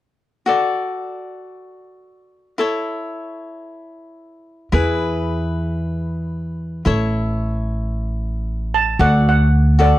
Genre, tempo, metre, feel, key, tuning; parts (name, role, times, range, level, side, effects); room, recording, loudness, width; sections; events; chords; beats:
calypso; 113 BPM; 4/4; swing 53% on 16ths; D major; A4 = 440 Hz
cavaquinho; accompaniment; 0.5-10.0 s; E4 to D5; -22 LUFS; left 3 dB
upright bass; bass; 4.7-9.9 s; A1 to E2; -18 LUFS; equal
steel pan; melody; 8.7-10.0 s; D5 to A5; -19 LUFS; right 6 dB
little or no reverb; dry, close 1970s-style studio recording; -17 LUFS; side -15 dB against mid
0.5-9.0 A section; 9.0-10.0 B section
0.5 D; 2.6 A; 4.7 E; 6.9 A; 9.0 D
| 0.46 0.99 1.53 2.06 | 2.60 3.13 3.66 4.20 | 4.73 5.26 5.80 6.33 | 6.86 7.39 7.93 8.46 | 8.99 9.52